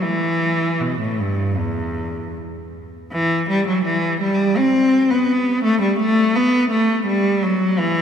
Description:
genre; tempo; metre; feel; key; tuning
classical, baroque-style suite movement for unaccompanied cello; 76-87 BPM; 4/4; rubato; E minor; A4 = 443 Hz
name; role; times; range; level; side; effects
rich cello; solo; 0.0-8.0 s; E2 to C4; -17 LUFS; equal; none
room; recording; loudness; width
wet church reverb, RT60 3.5 s; none; -16 LUFS; side -8 dB against mid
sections
0.0-3.1 A section; 3.1-8.0 B section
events
none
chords
none

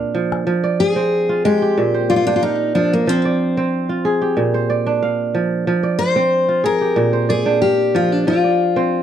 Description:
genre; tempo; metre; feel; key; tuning
west african traditional, West African string and xylophone music; 92 BPM; 4/4; straight; F dorian; A4 = 440 Hz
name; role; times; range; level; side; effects
kora; arpeggios; 0.0-9.0 s; Bb2 to G5; -17 LUFS; right 3 dB; none
calabash; percussion; 0.3-0.5 s; none; -28 LUFS; left 7 dB; none
picked steel-string acoustic guitar; melody; 0.8-9.0 s; Bb3 to C5; -17 LUFS; left 4 dB; slapback echo
room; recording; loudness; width
light reverb; dry, close 1970s-style studio recording; -15 LUFS; side -9 dB against mid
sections
0.5-9.0 A section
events
none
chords
0.5 Fm; 1.8 Bb; 3.1 Fm; 4.4 Bb; 5.7 Fm; 7.0 Bb; 8.3 F5

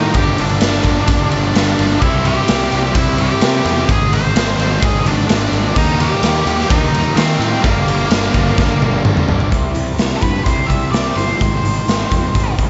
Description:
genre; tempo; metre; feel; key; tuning
quiet-loud alternative rock; 128 BPM; 4/4; straight; unclear; A4 = 440 Hz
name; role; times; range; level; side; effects
octave-fuzz lead guitar; melody; 0.0-12.5 s; Bb3 to C6; -22 LUFS; equal; distortion, slapback echo
fuzz guitar; riff; 0.0-12.7 s; G2 to E4; -26 LUFS; equal; none
sludgy distorted guitar; riff; 0.0-9.5 s; G2 to E4; -24 LUFS; equal; overdrive, slapback echo
fuzz picked electric bass; bass; 0.0-12.7 s; G1 to Eb3; -22 LUFS; equal; overdrive
raw garage drum kit; drums; 0.1-12.7 s; crash cymbal, hi-hat, kick drum, ride cymbal, snare drum, toms; -18 LUFS; equal; none
picked steel-string acoustic guitar; arpeggios; 9.5-12.7 s; Ab2 to E4; -28 LUFS; equal; slapback echo
room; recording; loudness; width
moderate lush hall reverb, RT60 1.6 s, small room ambience; big arena sound, nothing above 7.9 kHz; -15 LUFS; mono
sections
0.0-9.5 A section; 9.5-12.7 B section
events
drum fill 8.6-9.5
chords
0.2 Gm; 2.0 C; 3.9 Ab; 5.8 Eb; 7.6 Gm; 9.5 C; 11.4 Ab

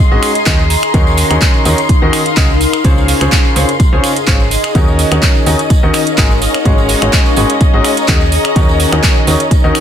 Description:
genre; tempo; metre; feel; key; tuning
piano house; 126 BPM; 4/4; swing 54% on 16ths; unclear; A4 = 442 Hz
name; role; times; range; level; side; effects
muted chamber string section; sustained chords; 0.0-9.8 s; Db4 to C6; -19 LUFS; left 2 dB; sidechain pumping
ethereal airy pad; texture; 0.0-9.8 s; Eb4 to Bb5; -18 LUFS; left 2 dB; ensemble chorus, built-in reverb, sidechain pumping
clear upright piano; riff; 0.1-9.8 s; Db3 to Eb5; -17 LUFS; left 1 dB; sidechain pumping, tape echo
solid FM bass; bass; 0.1-9.7 s; Ab1 to Eb2; -15 LUFS; equal; sidechain pumping
house drum kit; drums; 0.2-9.8 s; finger snaps, handclaps, hi-hat; -17 LUFS; right 1 dB; soft clipping on snare
tambourine; percussion; 0.2-9.8 s; none; -26 LUFS; right 6 dB; none
electronic kick drum; drums; 0.5-9.6 s; none; -11 LUFS; equal; none
room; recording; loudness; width
small room ambience; dense, heavily limited modern master; -9 LUFS; side -9 dB against mid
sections
0.0-9.8 A section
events
none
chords
0.0 Ab7sus4; 0.7 Ebm7; 2.6 Dbmaj7; 4.8 Ab7sus4; 8.3 Ebm7

